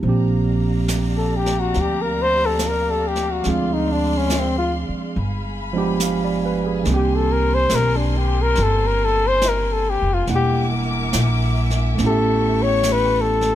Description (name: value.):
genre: jazz ballad.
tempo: 70 BPM.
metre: 4/4.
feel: swing 69% on 8ths.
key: Bb major.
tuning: A4 = 440 Hz.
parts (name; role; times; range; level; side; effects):
barky tine electric piano; accompaniment; 0.0-13.6 s; Eb3 to Gb5; -23 LUFS; right 5 dB; none.
dark chamber string section; sustained chords; 0.0-13.6 s; Ab3 to D6; -30 LUFS; left 2 dB; none.
upright bass; bass; 0.0-13.6 s; E1 to D2; -22 LUFS; equal; none.
jazz brush drum kit; drums; 0.0-13.6 s; brushed snare drum, hi-hat, snare drum; -29 LUFS; right 2 dB; none.
mellow flugelhorn; melody; 1.2-13.6 s; C4 to C#5; -20 LUFS; left 3 dB; none.
room: little or no reverb.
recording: none.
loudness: -17 LUFS.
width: side -12 dB against mid.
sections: 0.0-13.6 A section.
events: flugelhorn solo 0.0-13.6.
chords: 0.0 Bb6; 3.4 Dm7b5; 5.2 G7b9; 6.9 Cm7; 10.3 Em7b5; 12.0 A7.